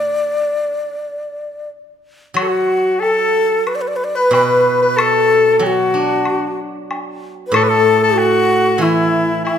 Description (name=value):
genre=chinese traditional, Chinese chamber ensemble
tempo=92 BPM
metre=4/4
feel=rubato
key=unclear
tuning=A4 = 441 Hz
part: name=breathy bright low xiao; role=melody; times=0.0-9.6 s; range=E4 to D5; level=-16 LUFS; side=left 1 dB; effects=none
part: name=steel-string zither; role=accompaniment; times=2.3-9.6 s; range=A2 to D4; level=-21 LUFS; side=right 3 dB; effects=none
part: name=warm soprano saxophone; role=second line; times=2.4-9.6 s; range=E4 to B4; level=-17 LUFS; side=left 4 dB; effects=none
part: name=woodblock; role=percussion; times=2.4-9.6 s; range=none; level=-24 LUFS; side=left 2 dB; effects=none
room=moderate concert hall reverb, RT60 1.7 s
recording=none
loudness=-13 LUFS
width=side -8 dB against mid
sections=0.0-2.4 A section; 2.4-9.6 B section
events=none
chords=none